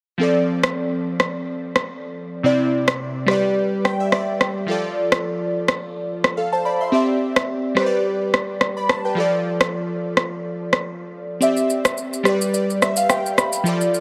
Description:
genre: afrobeats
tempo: 107 BPM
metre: 4/4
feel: swing 55% on 16ths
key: unclear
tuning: A4 = 440 Hz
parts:
  - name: glassy digital keys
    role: accompaniment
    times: 0.2-14.0 s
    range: C3 to C6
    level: -22 LUFS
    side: equal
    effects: chorus
  - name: electronic rim click and shaker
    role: drums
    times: 0.6-14.0 s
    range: none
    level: -22 LUFS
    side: equal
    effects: none
room: moderate plate reverb, RT60 2.1 s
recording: heavily compressed radio sound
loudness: -21 LUFS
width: mono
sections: 0.2-14.0 A section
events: synth keys fill 3.6-4.7, 12.0-13.7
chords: 0.2 F6; 2.4 Cadd9; 3.3 G; 4.7 F6; 6.9 Cadd9; 7.8 G; 9.2 F6; 11.4 Cadd9; 12.3 G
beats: | 0.20 0.76 1.32 1.88 | 2.44 3.01 3.57 4.13 | 4.69 5.25 5.81 6.37 | 6.93 7.49 8.05 8.61 | 9.17 9.73 10.30 10.86 | 11.42 11.98 12.54 13.10 | 13.66

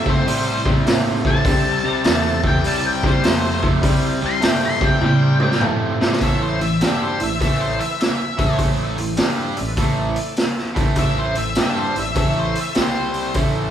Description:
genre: blues rock power trio and southern rock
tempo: 101 BPM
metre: 4/4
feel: swing 66% on 8ths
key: A minor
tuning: A4 = 440 Hz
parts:
  - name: octave-fuzz lead guitar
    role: melody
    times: 0.0-13.4 s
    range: C5 to C6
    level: -24 LUFS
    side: left 3 dB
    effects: distortion, digital delay
  - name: overdriven semi-hollow guitar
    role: riff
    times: 0.0-13.7 s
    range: A2 to G4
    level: -22 LUFS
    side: equal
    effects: none
  - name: modern bright picked electric bass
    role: bass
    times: 0.0-13.7 s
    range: A1 to A2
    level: -27 LUFS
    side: equal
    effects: none
  - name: overdriven tonewheel organ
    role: sustained chords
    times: 0.1-13.7 s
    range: G3 to C6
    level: -32 LUFS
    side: right 1 dB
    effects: none
  - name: raw garage drum kit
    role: drums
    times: 0.1-13.5 s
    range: hi-hat, kick drum, snare drum, toms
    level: -19 LUFS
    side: equal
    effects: none
room: moderate large studio reverb, RT60 1.2 s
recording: band playing live in one room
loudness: -16 LUFS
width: side -10 dB against mid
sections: 0.0-6.2 A section; 6.2-13.7 B section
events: lead electric guitar solo 0.0-6.2; drum fill 5.0-6.2; tonewheel organ fill 9.8-11.0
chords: 0.0 C; 6.2 Am; 12.8 C5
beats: 0.28 0.87 | 1.46 2.06 2.65 3.25 | 3.84 4.43 5.03 5.62 | 6.22 6.81 7.41 8.00 | 8.60 9.19 9.79 10.38 | 10.98 11.58 12.17 12.77 | 13.36

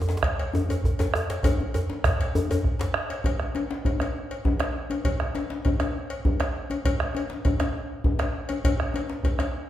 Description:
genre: west african traditional, West African drum ensemble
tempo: 133 BPM (dotted quarters)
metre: 12/8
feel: straight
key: none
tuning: none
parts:
  - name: djembe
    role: percussion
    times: 0.0-2.9 s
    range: none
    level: -27 LUFS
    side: equal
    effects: none
  - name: djembe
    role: percussion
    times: 0.1-9.5 s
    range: none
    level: -30 LUFS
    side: left 4 dB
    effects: none
  - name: bombo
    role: percussion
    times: 0.2-9.5 s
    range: none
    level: -26 LUFS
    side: right 1 dB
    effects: none
  - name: cowbell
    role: percussion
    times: 0.2-9.5 s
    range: none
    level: -35 LUFS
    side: left 3 dB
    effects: none
room: wet large studio reverb, RT60 1.5 s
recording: band playing live in one room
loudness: -24 LUFS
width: side -12 dB against mid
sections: 0.0-3.3 A section; 3.3-9.7 B section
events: drum fill 1.4-3.3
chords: none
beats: 0.09 0.55 1.00 | 1.45 1.90 2.35 2.80 | 3.25 3.71 4.16 4.61 | 5.06 5.51 5.96 6.41 | 6.85 7.30 7.75 8.20 | 8.65 9.10

